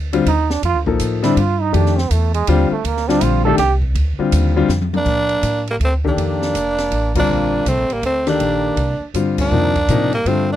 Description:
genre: modal jazz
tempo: 162 BPM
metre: 3/4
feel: swing 64% on 8ths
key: Bb major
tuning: A4 = 439 Hz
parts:
  - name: upright bass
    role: bass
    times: 0.0-10.6 s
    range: F1 to Bb2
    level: -19 LUFS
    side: equal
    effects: none
  - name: warm baby grand piano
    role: accompaniment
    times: 0.1-10.5 s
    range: C3 to A4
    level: -18 LUFS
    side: left 5 dB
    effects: none
  - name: open jazz drum kit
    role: drums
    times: 0.1-10.4 s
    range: crash cymbal, hi-hat, kick drum, ride cymbal, snare drum, toms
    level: -27 LUFS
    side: equal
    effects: none
  - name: clear trombone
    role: second line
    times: 0.3-10.6 s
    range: G3 to A4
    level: -23 LUFS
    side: right 8 dB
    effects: none
  - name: growling tenor saxophone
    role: melody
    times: 5.0-10.6 s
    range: Bb3 to D4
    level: -19 LUFS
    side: right 1 dB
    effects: none
room: little or no reverb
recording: dry, close 1970s-style studio recording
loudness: -15 LUFS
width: side -12 dB against mid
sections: 0.0-5.1 A section; 5.1-10.6 B section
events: trombone solo 0.0-5.1; drum fill 4.7-5.1; band accent 7.1, 9.3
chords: 0.0 Bbmaj9

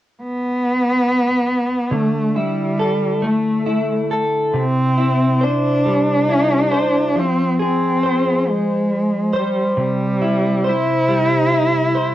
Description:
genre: pop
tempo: 46 BPM (dotted quarters)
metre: 6/8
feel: straight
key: C major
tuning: A4 = 440 Hz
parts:
  - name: warm cello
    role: melody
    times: 0.2-12.1 s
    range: G3 to E4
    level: -18 LUFS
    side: equal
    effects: cassette tape
  - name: direct-recorded clean electric guitar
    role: accompaniment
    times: 1.9-12.1 s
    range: C3 to C5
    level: -19 LUFS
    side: left 1 dB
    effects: double-tracked left and right, cassette tape
room: moderate studio reverb, RT60 0.6 s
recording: home recording on cassette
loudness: -15 LUFS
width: side -13 dB against mid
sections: 0.0-1.9 A section; 1.9-12.1 B section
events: none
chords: 0.0 N.C.; 1.9 Dsus2; 4.5 C; 7.2 Fm; 9.8 C

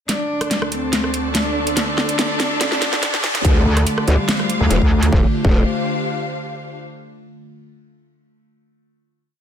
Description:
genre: heavy wobble dubstep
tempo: 143 BPM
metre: 4/4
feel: half-time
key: D minor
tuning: A4 = 440 Hz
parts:
  - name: dark cello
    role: melody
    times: 0.1-5.6 s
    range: G3 to D4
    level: -24 LUFS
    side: equal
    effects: ping-pong delay
  - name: evolving wavetable pad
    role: sustained chords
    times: 0.4-5.3 s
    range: D2 to F4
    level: -26 LUFS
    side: left 2 dB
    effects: phaser, built-in reverb, sidechain pumping
  - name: dubstep drum kit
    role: drums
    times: 0.1-5.1 s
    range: hi-hat, rim click, snare drum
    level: -20 LUFS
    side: equal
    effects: studio reverb
  - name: riser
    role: sound effects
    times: 1.2-3.4 s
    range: none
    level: -30 LUFS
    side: equal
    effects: none
  - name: warm symphonic string section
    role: texture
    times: 0.1-6.8 s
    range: D4 to A5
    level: -27 LUFS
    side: left 1 dB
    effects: sidechain pumping
  - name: growl bass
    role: bass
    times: 3.4-5.6 s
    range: D1 to D2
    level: -17 LUFS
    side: equal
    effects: chorus, overdrive
  - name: electronic kick drum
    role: drums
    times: 3.4-5.5 s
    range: none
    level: -16 LUFS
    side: equal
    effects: studio reverb
  - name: metallic wobble bass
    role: bass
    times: 3.7-5.1 s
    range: D2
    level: -16 LUFS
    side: equal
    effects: distortion, chorus, overdrive
room: light reverb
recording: dense, heavily limited modern master, high-pass filter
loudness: -16 LUFS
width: side -8 dB against mid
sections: 0.1-3.4 build; 3.4-5.1 outro; 5.1-6.8 final chord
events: build-up 0.1-3.4; drum fill 0.1-3.4; filter sweep 0.1-3.4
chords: 0.1 D5; 3.4 Dm

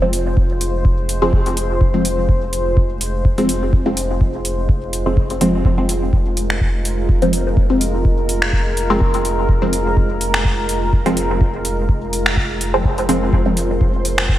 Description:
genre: dub techno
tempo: 125 BPM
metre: 4/4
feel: swing 54% on 16ths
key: F minor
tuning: A4 = 440 Hz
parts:
  - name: deep dark ambient pad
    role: sustained chords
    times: 0.0-14.4 s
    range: Ab3 to C5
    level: -23 LUFS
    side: equal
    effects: chorus, built-in reverb, sidechain pumping
  - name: filtered dub chord stab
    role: stabs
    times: 0.0-13.6 s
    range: F3 to C4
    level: -20 LUFS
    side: equal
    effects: phaser, sidechain pumping, dub echo
  - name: soft dub sub bass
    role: bass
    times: 0.0-14.4 s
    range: F1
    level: -22 LUFS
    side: equal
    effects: sidechain pumping
  - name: booming analog drum machine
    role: drums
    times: 0.1-14.3 s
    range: finger snaps, hi-hat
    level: -22 LUFS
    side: equal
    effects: gated reverb
  - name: electronic kick drum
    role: drums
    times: 0.4-14.4 s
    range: none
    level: -17 LUFS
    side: equal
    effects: none
  - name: flickering grainy texture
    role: texture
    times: 13.7-14.4 s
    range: C5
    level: -29 LUFS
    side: right 2 dB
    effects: built-in reverb, sidechain pumping
room: moderate lush hall reverb, RT60 2.7 s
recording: bright 1980s-style digital production, vinyl crackle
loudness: -15 LUFS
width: side -13 dB against mid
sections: 0.0-14.4 A section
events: none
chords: 0.0 Fm

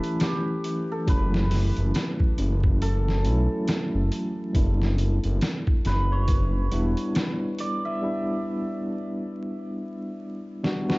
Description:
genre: trip hop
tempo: 69 BPM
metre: 4/4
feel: swing 59% on 16ths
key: unclear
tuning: A4 = 443 Hz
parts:
  - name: cimbalom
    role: melody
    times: 0.0-10.1 s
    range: G4 to E5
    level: -34 LUFS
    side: right 1 dB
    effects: dub echo
  - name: bright tine electric piano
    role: accompaniment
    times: 0.0-11.0 s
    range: E3 to F#4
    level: -29 LUFS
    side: equal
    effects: tremolo, vintage 12-bit sampler grit
  - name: trip hop sampler-style drum kit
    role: drums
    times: 0.0-11.0 s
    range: hi-hat, kick drum, snare drum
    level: -25 LUFS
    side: equal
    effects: small room ambience
  - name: tambourine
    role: percussion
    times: 0.2-7.4 s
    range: none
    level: -47 LUFS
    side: equal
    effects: none
  - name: dark detuned saw bass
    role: bass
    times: 1.1-7.0 s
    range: E1 to B1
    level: -23 LUFS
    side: equal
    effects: none
room: digital ambience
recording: dark, warm production, vinyl crackle, nothing above 7.7 kHz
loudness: -23 LUFS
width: side -24 dB against mid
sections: 0.0-11.0 A section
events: break 8.0-11.0; drum fill 10.6-11.0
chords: 0.0 F#m7; 4.6 Em7

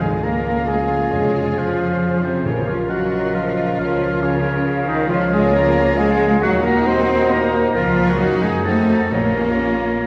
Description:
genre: classical, dramatic, fast romantic movement for symphony orchestra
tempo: 135 BPM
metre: 3/4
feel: rubato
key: Bb minor from 5.1 s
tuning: A4 = 444 Hz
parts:
  - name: warm studio violin section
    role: melody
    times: 0.0-10.1 s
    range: Bb4 to Db5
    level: -40 LUFS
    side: equal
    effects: none
  - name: rich symphonic violin section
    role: second line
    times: 0.0-10.1 s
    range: F4 to Bb4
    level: -35 LUFS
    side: equal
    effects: none
  - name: warm clarinet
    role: second line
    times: 0.0-10.1 s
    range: C4 to C5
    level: -27 LUFS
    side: equal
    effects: none
  - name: warm oboe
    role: second line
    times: 0.0-10.1 s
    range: C5 to C6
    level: -28 LUFS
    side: equal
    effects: none
  - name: bright symphonic viola section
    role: accompaniment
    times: 0.0-10.1 s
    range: Db4 to F4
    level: -31 LUFS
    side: equal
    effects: none
  - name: warm French horn section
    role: sustained chords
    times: 0.0-10.1 s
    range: Db4 to Bb4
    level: -30 LUFS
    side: equal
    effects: none
  - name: warm trombone section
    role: sustained chords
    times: 0.0-10.1 s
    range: F2 to C4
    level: -29 LUFS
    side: equal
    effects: none
  - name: rich studio double bass section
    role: bass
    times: 0.0-10.1 s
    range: Bb1 to Gb2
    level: -30 LUFS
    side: equal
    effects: none
  - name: rich symphonic cello section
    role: bass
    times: 0.0-10.1 s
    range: C3 to C4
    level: -22 LUFS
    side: equal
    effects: none
  - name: mellow hollow silver concert flute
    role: second line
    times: 0.2-10.1 s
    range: Bb4 to Gb5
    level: -27 LUFS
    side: equal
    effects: none
  - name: timpani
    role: percussion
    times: 1.1-3.1, 9.1-9.8 s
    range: F2 to Bb2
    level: -30 LUFS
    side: equal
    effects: none
room: wet concert hall reverb, RT60 2.0 s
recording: recorded in a church or concert hall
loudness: -18 LUFS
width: mono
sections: 0.0-10.1 A section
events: none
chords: 0.0 Db; 1.1 Db/F; 2.5 Bbm; 3.8 Bbm/Db; 5.1 Db; 6.4 Ebm; 7.8 Bbm/Db; 8.2 Ebm/Gb; 8.7 F7b9; 9.1 Bbm

